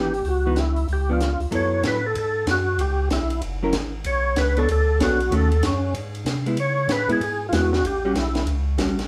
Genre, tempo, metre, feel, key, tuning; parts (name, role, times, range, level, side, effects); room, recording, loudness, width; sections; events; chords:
soul jazz organ trio; 190 BPM; 4/4; swing 63% on 8ths; F# minor; A4 = 440 Hz
percussive tonewheel organ; melody; 0.0-8.5 s; C#4 to C#5; -26 LUFS; equal; slow rotary speaker, overdrive, chorus vibrato
hollow-body jazz guitar; accompaniment; 0.0-9.0 s; D#3 to C#5; -28 LUFS; equal
tonewheel organ; bass; 0.0-9.1 s; F#1 to C#3; -26 LUFS; equal; slow rotary speaker
compact cocktail drum kit; drums; 0.1-9.0 s; hi-hat, ride cymbal, snare drum; -31 LUFS; equal
wet studio reverb, RT60 0.8 s; band playing live in one room; -22 LUFS; mono
0.0-1.5 A section; 1.5-9.1 B section
0.0 C#m9; 0.9 C#7b9; 1.5 F#m11; 2.8 C#m7b5; 3.4 F#7; 4.0 Bm9; 5.3 D#m7b5; 5.9 G#aug; 6.6 C#m7; 7.8 A13